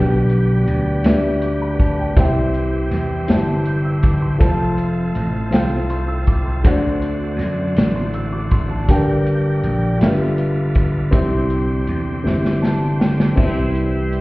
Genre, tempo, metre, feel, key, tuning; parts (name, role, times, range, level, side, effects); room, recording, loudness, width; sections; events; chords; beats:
slow gospel; 54 BPM (dotted quarters); 6/8; straight; A4 = 436 Hz
dark upright piano; accompaniment; 0.0-14.2 s; G2 to G6; -21 LUFS; equal
bright tonewheel organ; sustained chords; 0.0-14.2 s; D3 to A4; -27 LUFS; right 2 dB; slow rotary speaker, overdrive
vintage slap bass; bass; 0.0-14.2 s; F1 to F#2; -19 LUFS; equal
warm soul drum kit; drums; 0.3-14.2 s; crash cymbal, hi-hat, kick drum, snare drum; -16 LUFS; equal
mellow French horn section; sustained chords; 13.4-14.2 s; G3 to G4; -30 LUFS; left 1 dB
little or no reverb; heard muffled through a wall, stone room reverb, EQ, faint mains hum; -15 LUFS; side -20 dB against mid
0.0-13.4 A section
drum fill 12.3-13.4; upright piano fill 12.3-13.4
0.0 G/B; 2.2 C; 4.4 F; 6.6 D7; 8.9 Gm; 10.0 G13; 11.1 C
1.05 | 2.17 3.29 | 4.41 5.53 | 6.65 7.77 | 8.89 10.01 | 11.13 12.25 | 13.38